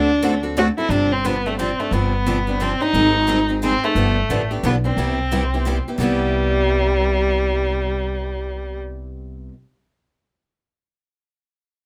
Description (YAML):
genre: acoustic string swing (jazz manouche)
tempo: 177 BPM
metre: 3/4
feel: swing 61% on 8ths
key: C major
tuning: A4 = 437 Hz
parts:
  - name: rich violin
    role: melody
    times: 0.0-8.8 s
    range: G3 to F#4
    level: -23 LUFS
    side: equal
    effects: none
  - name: picked steel-string acoustic guitar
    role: accompaniment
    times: 0.0-9.5 s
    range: C3 to A4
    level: -28 LUFS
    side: equal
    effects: none
  - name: picked steel-string acoustic guitar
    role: accompaniment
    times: 0.0-9.5 s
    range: C3 to A4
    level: -30 LUFS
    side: equal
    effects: none
  - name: upright bass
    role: bass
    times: 0.0-9.5 s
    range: G1 to D2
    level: -26 LUFS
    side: equal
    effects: none
room: light reverb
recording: none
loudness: -20 LUFS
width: mono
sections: 0.0-6.0 A section; 6.0-8.0 B section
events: none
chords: 0.0 D7; 0.9 G7sus4; 2.9 Abmaj7; 4.0 G9; 5.0 Cmaj7